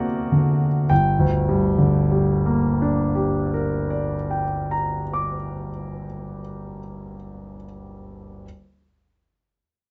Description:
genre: classical, impressionist solo piano.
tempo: 34 BPM.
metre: 3/4.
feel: rubato.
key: G minor.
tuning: A4 = 438 Hz.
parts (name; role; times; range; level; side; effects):
warm grand piano; solo; 0.0-8.5 s; G1 to D6; -23 LUFS; equal; none.
room: light reverb.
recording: nothing above 7.8 kHz.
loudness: -21 LUFS.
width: mono.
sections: 0.9-6.2 A section.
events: none.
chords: 0.0 Daug7; 0.9 Gm.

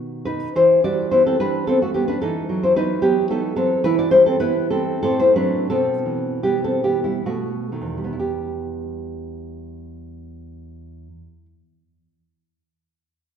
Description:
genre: romantic piece for solo classical guitar.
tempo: 61-113 BPM.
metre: 3/4.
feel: rubato.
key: E minor.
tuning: A4 = 440 Hz.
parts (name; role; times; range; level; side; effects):
nylon-string guitar; solo; 0.0-11.5 s; E2 to D5; -18 LUFS; equal; none.
room: moderate concert hall reverb, RT60 1.9 s.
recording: recorded in a church or concert hall.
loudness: -17 LUFS.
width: side -8 dB against mid.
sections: 0.0-8.2 A section; 8.2-13.4 B section.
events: slowing down 3.0-8.2.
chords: 0.0 B; 0.5 Em; 2.2 B/E; 3.9 Em; 5.0 F#dim/A; 5.7 Em/B; 7.3 B7; 8.2 Em.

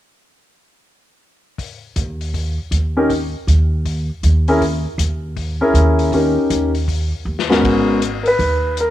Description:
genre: jazz piano trio.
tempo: 159 BPM.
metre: 4/4.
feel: swing 64% on 8ths.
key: G# minor.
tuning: A4 = 440 Hz.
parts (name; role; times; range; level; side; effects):
vintage drum kit; drums; 1.6-8.9 s; hi-hat, kick drum, ride cymbal, snare drum; -26 LUFS; left 6 dB; none.
upright bass; bass; 2.0-8.9 s; G#1 to D#2; -18 LUFS; right 1 dB; none.
warm baby grand piano; melody; 3.0-8.9 s; G#2 to B4; -15 LUFS; left 1 dB; none.
room: light reverb, studio reverb.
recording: 1960s-style stereo.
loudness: -15 LUFS.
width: side -13 dB against mid.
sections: 1.6-7.6 A section; 7.6-8.9 B section.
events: drum fill 7.3-7.6.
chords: 1.6 N.C.; 7.6 G#m11.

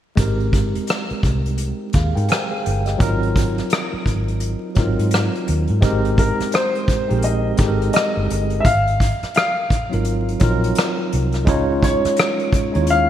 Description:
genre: R&B, neo-soul.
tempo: 85 BPM.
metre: 4/4.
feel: swing 59% on 16ths.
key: Ab major.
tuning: A4 = 438 Hz.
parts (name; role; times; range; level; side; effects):
bright tine electric piano; accompaniment; 0.2-13.1 s; Gb3 to Ab5; -22 LUFS; right 1 dB; fast stereo tremolo.
vintage muted fingered electric bass; bass; 0.2-13.1 s; G1 to Ab2; -20 LUFS; equal; none.
unplugged drum kit; drums; 0.2-13.1 s; hi-hat, kick drum, rim click; -20 LUFS; equal; gated reverb.
warm baby grand piano; melody; 6.2-13.1 s; Bb4 to F5; -21 LUFS; left 1 dB; lush chorus.
room: moderate plate reverb, RT60 2.3 s.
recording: bright 1980s-style digital production, vinyl crackle.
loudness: -16 LUFS.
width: side -11 dB against mid.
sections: 0.2-5.8 A section; 5.8-13.1 B section.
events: none.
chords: 0.2 Abmaj9; 3.0 Ab13; 5.8 Abmaj9; 8.6 Ab13; 11.5 Dbadd9.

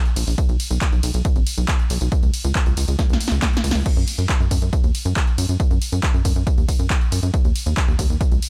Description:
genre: uplifting trance.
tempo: 138 BPM.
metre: 4/4.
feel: straight.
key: unclear.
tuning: A4 = 440 Hz.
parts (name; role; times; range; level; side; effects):
punchy analog drum machine; drums; 0.1-8.5 s; crash cymbal, handclaps, hi-hat, ride cymbal, snare drum, tambourine; -28 LUFS; equal; sidechain pumping on hats, sidechain pumping on cymbals, sidechain pumping on perc.
tight sequencer bass; bass; 0.2-8.4 s; Ab1 to Gb2; -23 LUFS; equal; sidechain pumping.
electronic kick drum; drums; 0.4-8.3 s; none; -21 LUFS; equal; none.
room: digital ambience.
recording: none.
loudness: -20 LUFS.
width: mono.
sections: 0.0-3.9 A section; 3.9-8.5 A section.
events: drop 0.0-3.9, 3.9-8.5; drum fill 3.0-3.9.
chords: none.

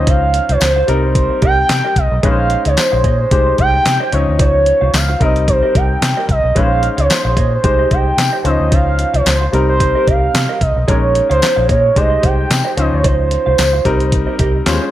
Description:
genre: early-eighties boogie funk.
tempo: 111 BPM.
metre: 4/4.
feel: swing 56% on 16ths.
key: unclear.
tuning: A4 = 440 Hz.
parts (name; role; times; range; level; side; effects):
gliding portamento lead; melody; 0.0-14.7 s; C5 to G5; -16 LUFS; right 1 dB; chorus, slapback echo.
clear baby grand piano; accompaniment; 0.0-14.9 s; F3 to Db5; -20 LUFS; left 4 dB; none.
vintage muted fingered electric bass; bass; 0.0-14.8 s; Bb1 to C3; -16 LUFS; equal; none.
mellow electric guitar; riff; 0.1-14.9 s; Db4 to F5; -24 LUFS; right 6 dB; lush chorus.
clean 12-bit digital drum machine; drums; 0.1-14.8 s; handclaps, hi-hat, kick drum, snare drum; -17 LUFS; equal; none.
tambourine; percussion; 0.6-14.8 s; none; -26 LUFS; left 11 dB; none.
room: light reverb.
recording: none.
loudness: -11 LUFS.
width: side -13 dB against mid.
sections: 0.0-14.9 A section.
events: none.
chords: 0.0 Dbmaj9; 0.9 Cm7; 2.2 Bbm11; 3.3 Abmaj7/C; 4.1 Dbmaj9; 5.2 Cm7; 6.6 Bbm11; 7.6 Abmaj7/C; 8.5 Dbmaj9; 9.5 Cm7; 10.9 Bbm7; 12.0 Abmaj7/C; 12.8 Dbmaj9; 13.9 Cm7.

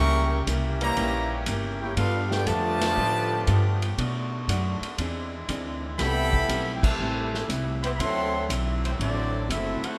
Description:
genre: jazz, big band swing.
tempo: 120 BPM.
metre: 4/4.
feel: swing 68% on 8ths.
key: unclear.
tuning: A4 = 440 Hz.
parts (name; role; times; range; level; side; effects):
clear trumpet section; melody; 0.0-10.0 s; A3 to C#6; -31 LUFS; equal; none.
dark trombone section; second line; 0.0-10.0 s; C3 to G4; -34 LUFS; equal; none.
vintage hollow-body jazz guitar; accompaniment; 0.0-9.8 s; A2 to A4; -37 LUFS; equal; none.
muted trombone section; sustained chords; 0.0-10.0 s; D3 to G4; -39 LUFS; equal; none.
upright bass; bass; 0.0-9.8 s; F#1 to B2; -30 LUFS; equal; none.
vintage drum kit; drums; 0.5-9.9 s; crash cymbal, hi-hat, kick drum, ride cymbal, snare drum; -34 LUFS; equal; none.
room: moderate large studio reverb, RT60 1.1 s.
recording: none.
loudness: -26 LUFS.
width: mono.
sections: 0.0-10.0 A section.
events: band accent 6.7.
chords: 0.0 C#dim7; 2.0 G9; 4.0 Bm7; 5.0 Eaug7; 6.0 Am7; 8.0 D9.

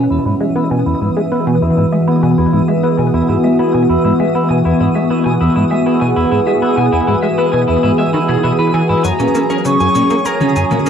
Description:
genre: ambient, sequencer-driven space music.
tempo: 99 BPM.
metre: 4/4.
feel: straight.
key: E lydian.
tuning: A4 = 440 Hz.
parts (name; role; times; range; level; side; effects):
evolving wavetable pad; sustained chords; 0.0-10.9 s; E3 to C#5; -14 LUFS; equal; phaser, built-in reverb, cassette tape.
electric guitar at the edge of break-up; arpeggios; 0.0-10.9 s; C#4 to G#5; -20 LUFS; equal; auto-pan, low-pass filter, cassette tape, ping-pong delay.
plucky analog bass; riff; 0.0-10.9 s; E2 to C#4; -18 LUFS; equal; analog chorus, cassette tape, ping-pong delay.
twinkling granular texture; texture; 0.5-10.9 s; D#6; -32 LUFS; right 3 dB; built-in reverb, cassette tape.
electronic cabasa and toms; percussion; 9.0-10.9 s; none; -22 LUFS; left 1 dB; cassette tape.
wooden flute; melody; 9.1-10.9 s; A#5 to C#6; -18 LUFS; equal; cassette tape, ping-pong delay.
room: wet booth ambience, RT60 0.2 s.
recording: home recording on cassette.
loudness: -11 LUFS.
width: side -8 dB against mid.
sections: 0.0-10.9 A section.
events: fade-in on synth texture 0.0-10.9; filter sweep on clean electric guitar 0.0-10.9.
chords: 0.0 E; 9.0 F#add9.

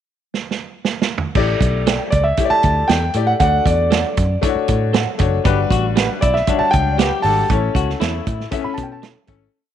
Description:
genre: uptempo 1960s-style soul.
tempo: 117 BPM.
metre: 4/4.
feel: straight.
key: A mixolydian.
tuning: A4 = 440 Hz.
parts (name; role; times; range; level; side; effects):
vintage drum kit; drums; 0.3-9.4 s; crash cymbal, hi-hat, kick drum, snare drum, toms; -20 LUFS; right 4 dB; none.
bright concert grand piano; accompaniment; 1.4-9.5 s; G3 to E5; -22 LUFS; left 10 dB; none.
vintage muted picked electric bass; bass; 1.4-9.5 s; F#1 to B2; -20 LUFS; equal; none.
electric guitar through a small old amp; stabs; 1.9-9.1 s; E4 to G5; -28 LUFS; right 9 dB; none.
warm concert grand piano; melody; 2.1-9.0 s; D5 to B5; -18 LUFS; right 1 dB; none.
electric guitar through a small old amp; riff; 5.5-9.4 s; C#4 to G4; -25 LUFS; left 10 dB; vibrato effect.
room: light reverb, studio reverb.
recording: 1960s-style stereo with parts hard left and right.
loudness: -15 LUFS.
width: side -10 dB against mid.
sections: 0.0-1.4 pickup bar; 1.4-9.5 A section.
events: drum fill 0.3-1.4; fade-out 7.5-9.5.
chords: 0.0 N.C.; 1.4 A7sus4; 3.4 Dmaj7; 5.5 Gmaj7; 7.5 A.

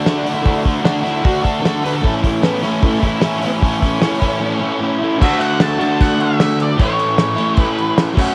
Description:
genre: garage rock duo or trio.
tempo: 152 BPM.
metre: 4/4.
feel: straight.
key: A major.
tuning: A4 = 441 Hz.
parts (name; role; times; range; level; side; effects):
octave-fuzz lead guitar; melody; 0.0-8.0 s; A3 to A5; -24 LUFS; equal; distortion, cassette tape.
crunchy overdriven guitar; riff; 0.0-8.3 s; A2 to F#4; -19 LUFS; equal; cassette tape.
cloth-damped thuddy drum kit; drums; 0.1-8.3 s; crash cymbal, hi-hat, kick drum, snare drum; -20 LUFS; equal; none.
room: light reverb, small room ambience.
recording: home recording on cassette.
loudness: -16 LUFS.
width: mono.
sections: 0.0-5.2 A section; 5.2-8.3 B section.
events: break 4.4-5.2.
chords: 0.0 D; 2.0 A; 5.2 D; 6.8 A.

